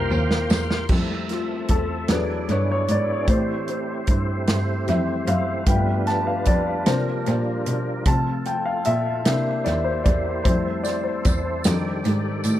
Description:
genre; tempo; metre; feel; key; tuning
slow gospel; 50 BPM (dotted quarters); 6/8; straight; F major; A4 = 440 Hz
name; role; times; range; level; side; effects
warm baby grand piano; accompaniment; 0.0-12.6 s; C3 to A5; -25 LUFS; left 2 dB; analog delay
tonewheel organ; sustained chords; 0.0-12.6 s; Eb3 to C6; -29 LUFS; right 2 dB; fast rotary speaker, chorus vibrato
warm cello; bass; 0.0-12.6 s; C2 to C3; -24 LUFS; equal; none
natural country drum kit; drums; 0.3-12.6 s; crash cymbal, hi-hat, kick drum, snare drum; -24 LUFS; equal; analog delay
tambourine; percussion; 0.5-0.9, 10.8-12.6 s; none; -36 LUFS; right 7 dB; analog delay
room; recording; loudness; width
light reverb; echo-heavy mix; -20 LUFS; side -13 dB against mid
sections
0.9-12.6 A section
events
drum fill 0.0-0.9; grand piano solo 0.9-12.6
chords
0.0 C7sus4; 0.9 Fmaj7; 2.1 E7; 3.3 Am7; 5.7 G7; 6.9 C9sus4; 8.1 F/C; 9.3 C7; 10.5 Fmaj7; 11.7 F13

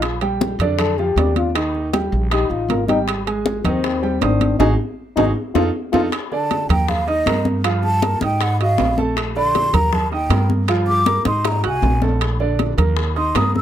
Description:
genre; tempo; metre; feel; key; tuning
Afro-Cuban jazz; 158 BPM; 4/4; straight; Bb major from 6.1 s; A4 = 440 Hz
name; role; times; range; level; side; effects
breathy trombone; second line; 0.0-6.0 s; C4 to A4; -20 LUFS; left 6 dB; none
clear baby grand piano; accompaniment; 0.0-13.6 s; D3 to Gb6; -23 LUFS; right 4 dB; none
upright bass; bass; 0.0-13.6 s; Ab1 to Ab2; -21 LUFS; equal; none
bongos; percussion; 0.0-13.5 s; none; -28 LUFS; left 8 dB; none
congas; percussion; 0.0-13.6 s; none; -23 LUFS; left 1 dB; none
timbales; percussion; 0.0-13.5 s; none; -26 LUFS; right 10 dB; none
breathy mellow concert flute; melody; 6.3-13.6 s; Eb5 to E6; -20 LUFS; equal; none
room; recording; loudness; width
little or no reverb; close, detailed microphones; -16 LUFS; side -10 dB against mid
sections
0.0-6.1 A section; 6.1-13.6 A section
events
trombone solo 0.0-6.1; band accent 4.6-6.1; drum fill 5.4-6.1, 11.5-12.2; flute solo 6.1-13.6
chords
0.0 Bb6; 1.6 Eb; 3.1 Abmaj7; 4.6 Ab5; 5.4 F7; 6.1 Bbmaj7; 6.9 Eb; 7.6 Gm9; 8.4 Ab5; 9.2 Bbmaj7; 9.9 Eb; 10.7 Gm7; 11.5 Ab7; 12.2 Bbmaj7; 13.0 Eb

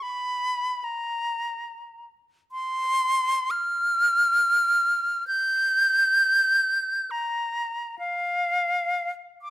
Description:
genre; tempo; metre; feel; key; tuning
classical, free, expressive piece for unaccompanied flute; 58-75 BPM; 3/4; rubato; unclear; A4 = 440 Hz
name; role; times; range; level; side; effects
bright concert flute; solo; 0.0-9.5 s; F5 to G6; -21 LUFS; equal; none
room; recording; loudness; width
light reverb; close, detailed microphones; -21 LUFS; side -15 dB against mid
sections
0.0-9.5 A section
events
none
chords
none

